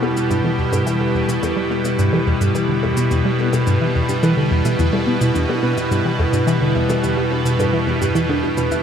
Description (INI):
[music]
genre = ambient, sequencer-driven space music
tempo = 107 BPM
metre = 4/4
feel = straight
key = E minor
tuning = A4 = 440 Hz
[part]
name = evolving wavetable pad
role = sustained chords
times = 0.0-8.8 s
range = B2 to G4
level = -19 LUFS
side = left 1 dB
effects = chorus, built-in reverb, shimmer reverb
[part]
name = tight sequenced synth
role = riff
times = 0.0-8.8 s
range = E2 to B3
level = -20 LUFS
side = equal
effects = chorus, phaser, analog delay
[part]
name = analog drone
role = bass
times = 0.0-8.8 s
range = E2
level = -35 LUFS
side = equal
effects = none
[part]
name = percussion blips and shaker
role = percussion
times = 0.0-8.8 s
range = none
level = -32 LUFS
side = left 3 dB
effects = analog delay
[part]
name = bubbling stepped-filter texture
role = texture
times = 0.0-8.8 s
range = B4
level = -27 LUFS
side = right 5 dB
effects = chorus, built-in reverb, shimmer reverb
[part]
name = soft round pluck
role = arpeggios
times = 0.2-8.8 s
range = D4 to E5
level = -30 LUFS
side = moving between left 6 dB and right 3 dB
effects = chorus, auto-pan, analog delay, shimmer reverb
[sound]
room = wet plate reverb, RT60 3.4 s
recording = dreamy mix soaked in reverb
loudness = -16 LUFS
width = side -8 dB against mid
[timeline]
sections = 0.0-8.8 A section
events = fade-in on synth arpeggio sound 0.0-8.8; filter sweep on synth arpeggio sound 0.0-8.8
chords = 0.0 Em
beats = 0.30 | 0.87 1.43 1.99 2.55 | 3.11 3.67 4.23 4.79 | 5.35 5.91 6.47 7.03 | 7.59 8.16 8.72